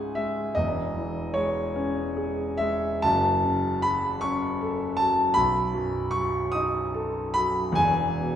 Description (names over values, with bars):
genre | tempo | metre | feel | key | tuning
classical, romantic nocturne for solo piano | 45-54 BPM (dotted quarters) | 6/8 | rubato | unclear | A4 = 440 Hz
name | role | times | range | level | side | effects
warm grand piano | solo | 0.0-8.4 s | E1 to D#6 | -23 LUFS | equal | none
room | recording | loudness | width
wet recital hall reverb, RT60 1.4 s | recorded in a church or concert hall | -23 LUFS | side -10 dB against mid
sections
0.0-8.4 A section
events
none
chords
0.0 C#m; 0.6 C#m/E; 3.0 F#m; 5.4 B7; 7.8 E